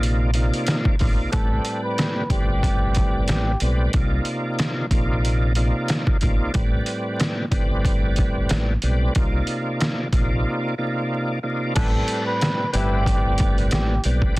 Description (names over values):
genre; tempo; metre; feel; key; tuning
hip hop, boom-bap hip-hop; 92 BPM; 4/4; swing 58% on 16ths; unclear; A4 = 437 Hz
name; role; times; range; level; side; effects
overdriven tonewheel organ; accompaniment; 0.0-14.4 s; A2 to D5; -25 LUFS; equal; chorus vibrato, slow rotary speaker, cassette tape, high-pass filter, low-pass filter
deep dub fingered electric bass; bass; 0.0-14.3 s; G1 to C2; -22 LUFS; equal; none
trip hop sampler-style drum kit; drums; 0.0-14.4 s; crash cymbal, hi-hat, kick drum, snare drum; -22 LUFS; equal; overdrive
trumpet with cup mute; melody; 1.3-3.6, 11.8-14.0 s; G4 to B4; -28 LUFS; equal; high-pass filter, low-pass filter
mellow horn section; stabs; 11.8-13.2 s; G3 to B4; -32 LUFS; left 2 dB; high-pass filter, low-pass filter, digital delay
room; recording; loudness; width
little or no reverb; dense, heavily limited modern master, vinyl crackle; -19 LUFS; side -20 dB against mid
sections
0.0-11.8 A section; 11.8-14.4 B section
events
break 10.5-11.8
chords
0.0 Cm11; 1.3 Am11; 3.9 Cm11; 6.5 Am11; 9.2 Cm11; 11.8 Am11